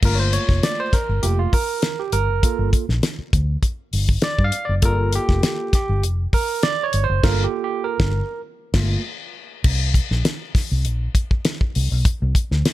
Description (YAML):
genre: funk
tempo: 100 BPM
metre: 4/4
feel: straight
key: G minor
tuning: A4 = 441 Hz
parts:
  - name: barky tine electric piano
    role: stabs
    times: 0.0-9.0 s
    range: A3 to F5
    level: -23 LUFS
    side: moving between left 1 dB and right 10 dB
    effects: auto-pan
  - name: vintage muted fingered electric bass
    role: bass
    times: 0.0-12.6 s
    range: F1 to G2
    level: -20 LUFS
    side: equal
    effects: tube saturation
  - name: damped 70s drum kit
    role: drums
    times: 0.0-12.7 s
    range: crash cymbal, hi-hat, kick drum, snare drum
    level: -20 LUFS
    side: left 1 dB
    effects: none
room: studio ambience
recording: none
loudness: -18 LUFS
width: side -15 dB against mid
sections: 0.0-9.6 A section; 9.6-12.7 B section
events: tine electric piano solo 0.0-9.6; band accent 7.2-9.6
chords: 0.0 Gm7; 9.6 N.C.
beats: | 0.03 0.63 1.23 1.83 | 2.44 3.04 3.64 4.24 | 4.84 5.44 6.04 6.64 | 7.24 7.84 8.44 9.04 | 9.65 10.25 10.85 11.45 | 12.05 12.65